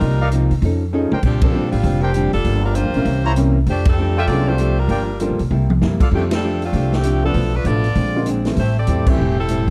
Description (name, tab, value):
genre	jazz, big band swing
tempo	196 BPM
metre	4/4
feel	swing 62% on 8ths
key	F major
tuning	A4 = 440 Hz
part	bright saxophone section	melody	0.0-9.7 s	D3 to E5	-26 LUFS	equal	plate reverb
part	archtop guitar, miked and amplified	accompaniment	0.0-9.7 s	G2 to A4	-25 LUFS	equal	none
part	upright bass	bass	0.0-9.7 s	E1 to C3	-21 LUFS	equal	none
part	swinging big-band drum kit	drums	0.0-9.7 s	crash cymbal, hi-hat, kick drum, ride cymbal, snare drum, toms	-22 LUFS	equal	none
part	mellow trumpet section	stabs	0.2-6.1 s	D4 to Bb5	-27 LUFS	equal	none
part	clear baby grand piano	accompaniment	0.9-9.2 s	D3 to Bb4	-26 LUFS	equal	none
room	light reverb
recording	dark, warm production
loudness	-18 LUFS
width	mono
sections	0.0-6.1 A section; 6.1-9.7 A section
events	drum fill 0.9-1.2, 5.5-5.8; band accent 1.4, 3.8, 6.3, 9.0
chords	0.0 Cm11; 0.6 F7alt; 1.2 Bb69; 2.5 Gm7; 3.1 C7b9; 3.7 F69; 4.9 Gm7; 5.5 C7; 6.1 F69; 7.3 Bm7b5; 8.0 Bb9; 8.6 Am7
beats	| 0.01 0.32 0.62 0.93 | 1.24 1.54 1.84 2.15 | 2.46 2.76 3.07 3.37 | 3.68 3.98 4.29 4.59 | 4.90 5.20 5.51 5.82 | 6.12 6.43 6.73 7.04 | 7.35 7.65 7.96 8.27 | 8.57 8.88 9.19 9.49